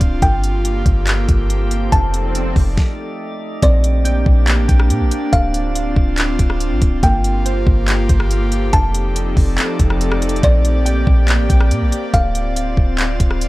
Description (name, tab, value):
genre	hip hop, atmospheric cloud-rap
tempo	141 BPM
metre	4/4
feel	half-time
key	Bb major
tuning	A4 = 440 Hz
part	kalimba	melody	0.0-13.5 s	D5 to A5	-22 LUFS	equal	analog delay
part	airy breathy pad	sustained chords	0.0-13.5 s	F3 to D5	-23 LUFS	equal	chorus, sidechain pumping
part	clean 808-style bass	bass	0.0-13.5 s	C1 to Bb2	-16 LUFS	equal	none
part	smooth R&B drum kit	drums	0.0-13.5 s	handclaps, hi-hat, kick drum, rim click, snare drum	-16 LUFS	equal	none
part	drifting glass-harmonics texture	texture	0.0-13.5 s	A3 to D5	-31 LUFS	right 2 dB	chorus, built-in reverb
part	swell	sound effects	1.5-2.8 s	none	-30 LUFS	equal	none
part	glassy digital keys	arpeggios	3.6-12.1 s	Bb3 to G5	-26 LUFS	right 4 dB	chorus, analog delay
room	little or no reverb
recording	none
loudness	-13 LUFS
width	side -18 dB against mid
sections	0.0-3.6 A section; 3.6-13.5 B section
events	swell 1.5-3.6; stop 2.8-3.6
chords	0.2 Gm11; 1.9 F13; 3.6 Bb69; 5.3 Dm7; 7.0 Gm11; 8.7 F13; 10.4 Bb69; 12.1 Dm7